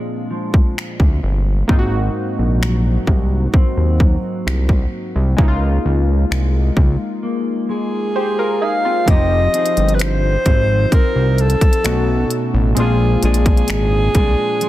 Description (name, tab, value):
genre	contemporary R&B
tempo	65 BPM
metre	4/4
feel	straight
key	F minor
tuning	A4 = 440 Hz
part	warm analog keys	accompaniment	0.0-14.7 s	F3 to C5	-24 LUFS	left 1 dB	chorus
part	mellow electric guitar	arpeggios	0.0-14.7 s	Ab2 to Ab4	-24 LUFS	left 1 dB	spring reverb
part	trap drum kit	drums	0.5-14.7 s	finger snaps, hi-hat, kick drum	-15 LUFS	equal	soft clipping on snare
part	fat analog bass	bass	1.0-14.4 s	F1 to Eb2	-16 LUFS	equal	none
part	warm alto saxophone	melody	7.7-14.7 s	Ab4 to F5	-19 LUFS	equal	ping-pong delay
room	digital ambience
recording	dense, heavily limited modern master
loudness	-14 LUFS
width	side -15 dB against mid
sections	0.0-9.1 A section; 9.1-14.7 B section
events	break 7.2-9.1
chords	0.0 Bb7; 1.7 Ab7; 5.4 Db6; 9.1 Fm7; 11.8 B9; 12.8 Bb7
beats	0.77 | 1.69 2.62 3.54 4.46 | 5.38 6.31 7.23 8.15 | 9.08 10.00 10.92 11.85 | 12.77 13.69 14.62